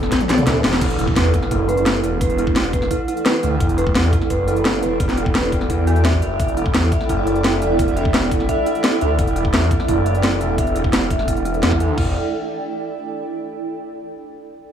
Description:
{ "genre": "dark technical drum and bass", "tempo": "172 BPM", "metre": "4/4", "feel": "straight", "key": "E minor", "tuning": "A4 = 440 Hz", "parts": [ { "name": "metallic inharmonic drone", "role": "sustained chords", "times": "0.0-0.8 s", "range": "E3 to A4", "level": "-30 LUFS", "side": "right 2 dB", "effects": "none" }, { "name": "phased detuned saw bass", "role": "bass", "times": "0.0-12.1 s", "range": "E1 to E2", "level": "-20 LUFS", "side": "equal", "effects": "phaser, overdrive, sidechain pumping" }, { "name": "drum and bass drum kit", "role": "drums", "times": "0.0-12.0 s", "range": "crash cymbal, hi-hat, snare drum, toms", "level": "-20 LUFS", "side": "left 1 dB", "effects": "none" }, { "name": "granular cloud pad", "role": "texture", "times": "0.0-13.3 s", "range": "E4 to B5", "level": "-24 LUFS", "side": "right 2 dB", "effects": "built-in reverb, sidechain pumping" }, { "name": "electronic kick drum", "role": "drums", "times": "0.1-12.0 s", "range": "none", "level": "-22 LUFS", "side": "equal", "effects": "none" }, { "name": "formant-sweep wobble bass", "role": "bass", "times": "0.3-0.6 s", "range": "B1 to D2", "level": "-19 LUFS", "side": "left 1 dB", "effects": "chorus" }, { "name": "dark detuned synth bell", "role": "arpeggios", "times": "0.8-12.1 s", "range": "E4 to E5", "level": "-24 LUFS", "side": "right 2 dB", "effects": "chorus, sidechain pumping, low-pass filter, dub echo" }, { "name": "impact", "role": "sound effects", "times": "0.8-2.2 s", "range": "none", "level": "-29 LUFS", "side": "equal", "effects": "none" } ], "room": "light reverb, digital ambience", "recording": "small room reverb", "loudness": "-16 LUFS", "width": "side -9 dB against mid", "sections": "0.8-12.0 A section; 12.0-13.4 B section", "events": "drum fill 0.1-0.8; kick drops out 0.5-0.8; impact 0.8-2.2; filter sweep on synth bell 0.8-12.0", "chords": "0.0 Em" }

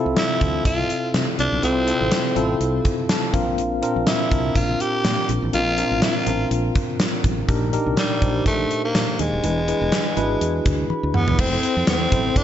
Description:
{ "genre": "1980s-style pop", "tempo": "123 BPM", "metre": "4/4", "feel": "swing 55% on 16ths", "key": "unclear", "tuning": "A4 = 436 Hz", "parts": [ { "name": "tine electric piano", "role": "accompaniment", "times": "0.0-12.4 s", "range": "Bb2 to B5", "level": "-23 LUFS", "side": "left 1 dB", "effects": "fast stereo tremolo" }, { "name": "woody fretless electric bass", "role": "bass", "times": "0.1-12.3 s", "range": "Eb1 to C3", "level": "-25 LUFS", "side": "equal", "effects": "none" }, { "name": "growling tenor saxophone", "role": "melody", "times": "0.2-12.4 s", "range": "G3 to G4", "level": "-24 LUFS", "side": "equal", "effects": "tape echo" }, { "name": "gated 80s drum kit", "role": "drums", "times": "0.2-12.4 s", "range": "crash cymbal, hi-hat, kick drum, snare drum, toms", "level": "-22 LUFS", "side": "equal", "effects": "gated reverb" } ], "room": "light reverb, small room ambience", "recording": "nothing above 7.9 kHz", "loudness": "-18 LUFS", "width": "side -10 dB against mid", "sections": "0.0-11.4 A section; 11.4-12.4 B section", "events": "tine electric piano fill 2.9-3.6, 10.7-11.4; drum fill 10.9-11.4", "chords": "0.0 Fmaj7/C; 3.3 Bbadd9; 7.5 Ebmaj7/Bb; 9.4 E7; 11.4 Am" }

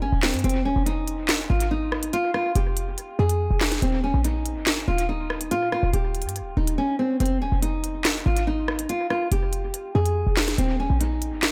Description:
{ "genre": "hip hop, drill", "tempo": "142 BPM", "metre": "4/4", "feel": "half-time", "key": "F minor", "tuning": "A4 = 438 Hz", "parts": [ { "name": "nylon-string guitar", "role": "melody", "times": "0.0-11.5 s", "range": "C4 to Ab4", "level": "-28 LUFS", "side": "equal", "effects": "dub echo" }, { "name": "short 808-style bass", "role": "bass", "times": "0.0-11.5 s", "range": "Eb1 to Bb2", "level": "-27 LUFS", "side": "equal", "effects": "none" }, { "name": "drill drum kit", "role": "drums", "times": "0.2-11.5 s", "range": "handclaps, hi-hat, rim click, snare drum", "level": "-28 LUFS", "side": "equal", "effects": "dub echo" } ], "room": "light reverb, digital ambience", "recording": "echo-heavy mix", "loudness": "-24 LUFS", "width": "mono", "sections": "0.0-11.5 A section", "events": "drums muted 6.8-7.2", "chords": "0.4 Fm; 3.8 Eb; 7.2 Fm; 10.6 Eb" }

